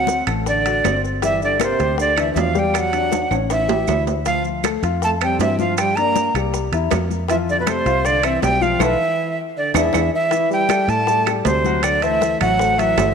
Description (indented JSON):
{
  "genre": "Afro-Cuban jazz",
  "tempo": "158 BPM",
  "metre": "4/4",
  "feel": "straight",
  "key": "unclear",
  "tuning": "A4 = 439 Hz",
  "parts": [
    { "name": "breathy bright jazz flute", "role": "melody", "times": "0.0-13.1 s", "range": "B4 to Bb5", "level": "-20 LUFS", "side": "right 1 dB", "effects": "tape echo" },
    { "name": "trombone with bucket mute", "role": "second line", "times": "0.0-13.1 s", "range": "B2 to Bb3", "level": "-26 LUFS", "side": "right 8 dB", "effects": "none" },
    { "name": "warm upright piano", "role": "accompaniment", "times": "0.0-13.1 s", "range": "E3 to G5", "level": "-24 LUFS", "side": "left 10 dB", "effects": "none" },
    { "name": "fingered electric bass", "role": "bass", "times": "0.0-13.1 s", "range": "G1 to A2", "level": "-24 LUFS", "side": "equal", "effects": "none" },
    { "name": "bongos", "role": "percussion", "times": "0.1-13.1 s", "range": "none", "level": "-32 LUFS", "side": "left 12 dB", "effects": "none" },
    { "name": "congas", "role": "percussion", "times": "0.1-13.1 s", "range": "none", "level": "-29 LUFS", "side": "left 12 dB", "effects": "none" },
    { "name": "maracas", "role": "percussion", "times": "0.1-13.1 s", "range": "none", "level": "-35 LUFS", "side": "right 15 dB", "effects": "none" },
    { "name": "timbales", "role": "percussion", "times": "0.1-13.1 s", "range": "none", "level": "-26 LUFS", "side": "right 12 dB", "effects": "none" },
    { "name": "claves", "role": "percussion", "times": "0.3-13.1 s", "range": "none", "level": "-30 LUFS", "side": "right 14 dB", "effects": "none" }
  ],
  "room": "wet echo chamber reverb, RT60 1.8 s, small room ambience",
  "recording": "1960s-style stereo with parts hard left and right",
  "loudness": "-16 LUFS",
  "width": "side -6 dB against mid",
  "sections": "0.0-10.3 A section; 10.3-13.1 B section",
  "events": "drum fill 3.1-4.3, 8.8-10.3; band accent 8.8-10.3",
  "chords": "0.0 D7; 1.2 Gm; 2.7 A7; 4.3 Dm7; 5.8 Gm7; 6.5 C7; 7.3 F; 8.8 B7sus4; 9.6 E7; 10.3 Am7; 11.8 D7",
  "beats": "0.09 0.47 0.85 | 1.23 1.61 1.99 2.37 | 2.75 3.12 3.50 3.88 | 4.26 4.64 5.02 5.40 | 5.78 6.16 6.54 6.92 | 7.29 7.67 8.05 8.43 | 8.81 9.19 9.57 9.95 | 10.32 10.70 11.08 11.46 | 11.84 12.22 12.60 12.97"
}